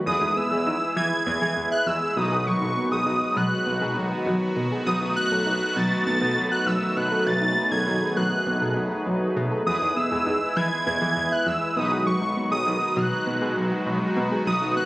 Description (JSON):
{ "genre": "pop", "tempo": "100 BPM", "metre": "4/4", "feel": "straight", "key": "B major", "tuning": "A4 = 442 Hz", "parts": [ { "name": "analog synth brass", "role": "accompaniment", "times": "0.0-14.9 s", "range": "D#4 to B4", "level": "-29 LUFS", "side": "equal", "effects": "chorus" }, { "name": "phased analog pad", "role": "sustained chords", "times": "0.0-14.9 s", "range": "D#3 to G#4", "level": "-29 LUFS", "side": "equal", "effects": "phaser, chorus" }, { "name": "wide unison lead", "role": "melody", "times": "0.1-14.9 s", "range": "C#6 to A6", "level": "-25 LUFS", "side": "equal", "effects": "tape echo" }, { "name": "soft round pluck", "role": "arpeggios", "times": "0.1-14.9 s", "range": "E3 to F#5", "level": "-29 LUFS", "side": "equal", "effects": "chorus, tape echo" }, { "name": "chorused synth bass", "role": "bass", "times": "0.1-14.7 s", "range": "B1 to E3", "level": "-28 LUFS", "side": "equal", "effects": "none" } ], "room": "light reverb", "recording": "recorded on a phone in the room, studio reverb, compression", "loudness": "-21 LUFS", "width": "side -18 dB against mid", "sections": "0.1-14.9 A section", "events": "none", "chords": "0.1 Emaj7; 2.2 B6; 4.9 B7; 9.7 Emaj7; 11.8 B6" }